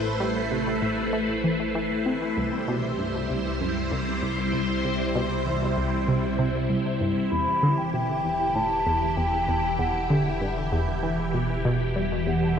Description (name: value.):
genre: ambient, sequencer-driven space music.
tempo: 97 BPM.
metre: 4/4.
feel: straight.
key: E minor.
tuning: A4 = 440 Hz.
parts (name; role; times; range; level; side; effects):
phased string machine; sustained chords; 0.0-12.6 s; C3 to C5; -26 LUFS; equal; ensemble chorus, phaser.
analog pluck; riff; 0.0-12.4 s; C2 to C4; -28 LUFS; equal; chorus, ping-pong delay.
fat analog bass; bass; 0.0-12.6 s; E1 to C2; -35 LUFS; equal; none.
mellow hollow wooden flute; melody; 7.3-12.6 s; D5 to B5; -27 LUFS; equal; ping-pong delay.
room: wet huge ambient reverb, RT60 7.7 s.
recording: none.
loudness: -23 LUFS.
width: side -8 dB against mid.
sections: 0.0-12.6 A section.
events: fade-in on analog synth bass 0.0-12.6.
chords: 0.0 Amadd9; 2.4 C; 7.3 Em.